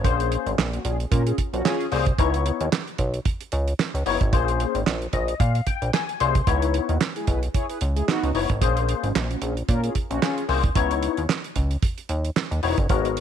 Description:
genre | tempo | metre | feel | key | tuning
early-eighties boogie funk | 112 BPM | 4/4 | swing 56% on 16ths | unclear | A4 = 441 Hz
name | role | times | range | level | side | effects
barky tine electric piano | accompaniment | 0.0-13.2 s | G#3 to B#5 | -25 LUFS | left 12 dB | overdrive, ensemble chorus
chorused synth bass | bass | 0.0-13.2 s | E1 to A#2 | -24 LUFS | equal | none
damped 70s drum kit | drums | 0.0-13.2 s | handclaps, hi-hat, kick drum, snare drum | -24 LUFS | right 3 dB | none
mellow synth brass | second line | 0.5-1.9, 6.9-10.4 s | E#3 to C#5 | -29 LUFS | equal | chorus
room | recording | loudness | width
light reverb, studio reverb | 1960s-style stereo | -21 LUFS | side -9 dB against mid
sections
0.0-13.2 A section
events
tine electric piano fill 4.9-6.5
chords
0.0 A#m9; 2.2 C#m9; 4.3 A#m9; 6.5 C#m9; 8.6 A#m9; 10.8 C#m9

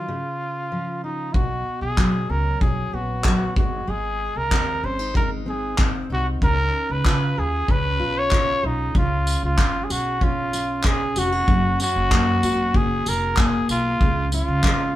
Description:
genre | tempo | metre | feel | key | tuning
acoustic pop | 95 BPM | 4/4 | straight | F# major | A4 = 440 Hz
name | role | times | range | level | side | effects
growling trumpet | melody | 0.0-15.0 s | D#4 to C#5 | -24 LUFS | equal | none
fingerpicked steel-string acoustic guitar | accompaniment | 0.0-15.0 s | F#2 to G#4 | -27 LUFS | equal | none
upright bass | bass | 1.3-14.9 s | E#1 to C#3 | -26 LUFS | equal | none
unplugged drum kit | drums | 1.3-14.8 s | handclaps, kick drum, tambourine | -21 LUFS | equal | none
room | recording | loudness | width
moderate studio reverb, RT60 0.6 s | band playing live in one room | -19 LUFS | side -14 dB against mid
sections
0.0-1.3 A section; 1.3-11.5 B section; 11.5-15.0 C section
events
none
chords
0.1 C#; 1.3 Bsus2; 3.6 G#; 6.4 C#add9; 11.5 F#add9; 14.0 C#

